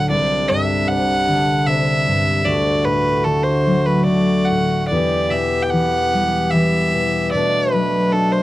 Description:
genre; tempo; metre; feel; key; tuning
celtic folk, Celtic slow air; 75 BPM; 3/4; rubato; E minor; A4 = 440 Hz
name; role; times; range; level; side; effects
warm fiddle; melody; 0.0-8.4 s; A4 to G5; -19 LUFS; right 1 dB; none
concert harp; accompaniment; 0.0-8.4 s; C2 to D4; -18 LUFS; left 1 dB; none
accordion; sustained chords; 0.0-8.4 s; B2 to G4; -25 LUFS; left 1 dB; none
room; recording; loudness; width
little or no reverb; dry, close 1970s-style studio recording; -15 LUFS; side -16 dB against mid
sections
0.0-8.4 A section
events
none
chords
0.1 Csus2; 2.5 D; 4.9 Em; 7.3 Bm7

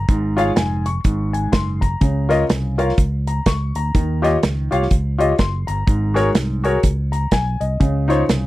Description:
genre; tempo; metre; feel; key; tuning
uptempo gospel; 124 BPM; 4/4; swing 60% on 8ths; Db major; A4 = 440 Hz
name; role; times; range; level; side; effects
warm concert grand piano; accompaniment; 0.0-8.5 s; Ab2 to Db6; -20 LUFS; left 1 dB; none
fingered electric bass; bass; 0.0-8.5 s; F1 to Eb2; -21 LUFS; equal; none
modern studio drum kit; drums; 0.1-8.4 s; hi-hat, kick drum, snare drum; -18 LUFS; right 1 dB; none
room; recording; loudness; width
little or no reverb; dry, close 1970s-style studio recording; -16 LUFS; side -16 dB against mid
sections
0.0-8.5 A section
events
none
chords
0.1 Db/Ab; 1.1 Gbadd9; 2.0 Db6; 3.9 Eb9; 5.9 Ab9sus4; 7.8 Dbmaj9

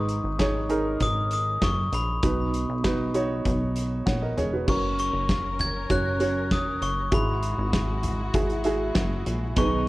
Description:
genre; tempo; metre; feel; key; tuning
piano-driven pop; 98 BPM; 4/4; straight; unclear; A4 = 442 Hz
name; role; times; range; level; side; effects
glockenspiel with brass mallets; melody; 0.0-9.9 s; B5 to G#6; -30 LUFS; left 2 dB; none
warm upright piano; accompaniment; 0.0-9.9 s; G#2 to F#5; -28 LUFS; right 2 dB; none
plucky analog bass; bass; 0.0-9.9 s; E1 to B1; -29 LUFS; equal; none
loose indie drum kit; drums; 0.1-9.7 s; crash cymbal, hi-hat, kick drum, snare drum, toms; -28 LUFS; equal; none
warm studio string section; sustained chords; 4.7-9.9 s; F#3 to A#4; -36 LUFS; left 2 dB; none
picked steel-string acoustic guitar; riff; 9.6-9.9 s; B2 to G#4; -28 LUFS; right 4 dB; none
room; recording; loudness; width
light reverb; worn, warbling old tape, cassette tape, warbly pitch drift; -23 LUFS; side -18 dB against mid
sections
0.0-4.7 A section; 4.7-9.9 B section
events
none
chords
0.0 G#m; 2.2 B; 4.7 F#; 7.1 Eadd9/G#

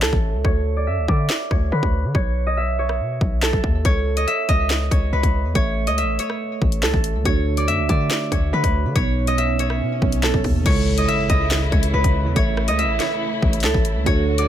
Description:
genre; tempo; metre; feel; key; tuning
hip hop, drill; 141 BPM; 4/4; half-time; C# minor; A4 = 440 Hz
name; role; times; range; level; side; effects
concert harp; melody; 0.0-14.5 s; A4 to E5; -23 LUFS; right 2 dB; low-pass filter, ping-pong delay
hard-hitting 808-style bass; bass; 0.0-14.5 s; A1 to D3; -22 LUFS; left 1 dB; none
drill drum kit; drums; 0.0-14.5 s; crash cymbal, handclaps, hi-hat, kick drum, rim click, snare drum; -21 LUFS; left 1 dB; none
mellow tine electric piano; accompaniment; 5.5-14.5 s; B2 to E5; -25 LUFS; right 3 dB; medium stereo tremolo, low-pass filter
swell and impact; sound effects; 9.3-12.4 s; none; -31 LUFS; equal; none
dark symphonic string section; sustained chords; 10.7-14.5 s; C#3 to F#4; -29 LUFS; left 3 dB; none
room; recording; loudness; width
digital ambience; none; -17 LUFS; side -10 dB against mid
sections
0.0-10.7 A section; 10.7-14.5 B section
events
break 0.0-5.6; swell 9.3-10.7; impact 10.7-12.4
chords
0.4 D5; 2.1 Badd9; 3.9 C#m; 5.6 A; 7.3 D; 9.0 Badd9; 10.7 C#m; 12.4 A

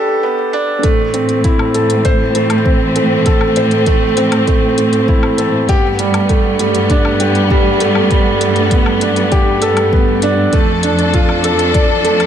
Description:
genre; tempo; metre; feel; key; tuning
piano and strings electronica; 99 BPM; 4/4; straight; A minor; A4 = 440 Hz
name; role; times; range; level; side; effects
felt-muted upright piano; riff; 0.0-12.3 s; G3 to D5; -14 LUFS; right 2 dB; ping-pong delay
rich studio string section; sustained chords; 0.8-12.3 s; E3 to A4; -18 LUFS; left 1 dB; none
rich studio cello section; bass; 0.8-12.3 s; F2 to A2; -19 LUFS; equal; sidechain pumping
electronic hi-hat and woodblock; drums; 0.8-12.3 s; none; -24 LUFS; left 4 dB; none
electronic kick drum; drums; 0.8-11.9 s; none; -14 LUFS; equal; none
room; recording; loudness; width
light reverb, studio reverb; high-pass filter; -11 LUFS; side -9 dB against mid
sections
0.8-12.3 A section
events
break 0.0-0.8; drop 0.8-12.3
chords
0.0 Gadd9; 0.8 Am; 5.7 Gadd9; 10.5 Dm/F

